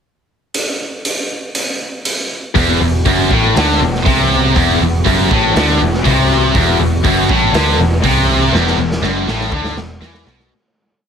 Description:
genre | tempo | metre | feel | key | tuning
hard rock | 120 BPM | 4/4 | straight | unclear | A4 = 445 Hz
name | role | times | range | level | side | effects
raw garage drum kit | drums | 0.5-10.5 s | hi-hat, kick drum, snare drum | -18 LUFS | right 1 dB | none
tight distorted guitar | riff | 2.5-10.5 s | E2 to E3 | -18 LUFS | left 11 dB | distortion
phased analog pad | sustained chords | 2.6-10.5 s | E3 to F#4 | -26 LUFS | equal | none
scooped high-gain guitar | riff | 2.6-10.5 s | E2 to E3 | -17 LUFS | right 10 dB | distortion
tight distorted guitar | riff | 2.6-10.5 s | E2 to E3 | -18 LUFS | equal | distortion
vintage muted fingered electric bass | bass | 2.6-10.5 s | E1 to E2 | -18 LUFS | equal | none
room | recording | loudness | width
light reverb, small room ambience | heavily compressed radio sound, multiband compression | -12 LUFS | side -7 dB against mid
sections
0.5-2.6 pickup bar; 2.6-10.5 riff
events
fade-out 8.5-10.5; drum fill 8.5-10.5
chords
0.5 N.C.; 2.6 E5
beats
| 0.55 1.05 1.55 2.05 | 2.56 3.06 3.56 4.06 | 4.56 5.06 5.55 6.05 | 6.55 7.05 7.54 8.04 | 8.53 9.03 9.52 10.01

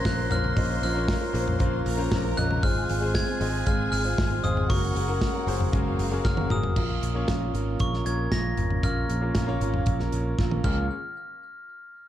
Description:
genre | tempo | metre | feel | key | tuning
piano-driven pop | 116 BPM | 4/4 | straight | unclear | A4 = 440 Hz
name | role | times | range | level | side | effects
glockenspiel with brass mallets | melody | 0.0-10.9 s | Db6 to Bb6 | -32 LUFS | left 1 dB | none
rich studio violin section | second line | 0.0-6.7 s | Gb4 to C6 | -36 LUFS | left 2 dB | none
clear concert grand piano | accompaniment | 0.0-10.9 s | Db2 to Eb5 | -32 LUFS | left 5 dB | none
picked steel-string acoustic guitar | riff | 0.0-10.9 s | Bb2 to C5 | -33 LUFS | right 8 dB | none
modern bright picked electric bass | bass | 0.1-10.9 s | Gb1 to Db2 | -28 LUFS | equal | none
modern studio drum kit | drums | 0.1-10.8 s | crash cymbal, hi-hat, kick drum, snare drum, toms | -27 LUFS | equal | none
room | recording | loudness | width
little or no reverb | dark, warm production | -23 LUFS | side -12 dB against mid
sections
0.0-6.8 A section; 6.8-10.9 B section; 10.9-12.1 C section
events
drum fill 6.2-6.8, 10.4-10.9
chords
0.0 Bbm; 2.6 Fm/Ab; 4.7 Gbadd9; 6.8 Bbm; 10.6 Db6; 10.9 N.C.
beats
0.05 | 0.56 1.08 1.60 2.12 | 2.63 3.15 3.67 4.18 | 4.70 5.21 5.73 6.25 | 6.76 7.28 7.80 8.32 | 8.83 9.35 9.87 10.38 | 10.90

